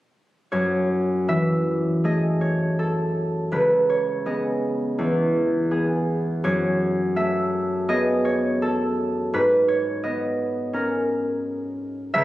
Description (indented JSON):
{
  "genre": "classical, solo harp piece",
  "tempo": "77-88 BPM",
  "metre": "4/4",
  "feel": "rubato",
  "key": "F# dorian",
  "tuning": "A4 = 439 Hz",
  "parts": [
    { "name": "concert harp", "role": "solo", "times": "0.5-12.2 s", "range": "C#2 to E5", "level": "-20 LUFS", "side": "equal", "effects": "none" }
  ],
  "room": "moderate recital hall reverb, RT60 1.4 s",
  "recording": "recorded on a phone in the room, club reverb, compression",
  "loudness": "-20 LUFS",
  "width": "side -16 dB against mid",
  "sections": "0.5-12.2 A section",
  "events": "none",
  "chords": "0.5 F#m9; 3.5 C#m9; 5.0 E6; 6.4 F#m11; 9.4 G#madd9"
}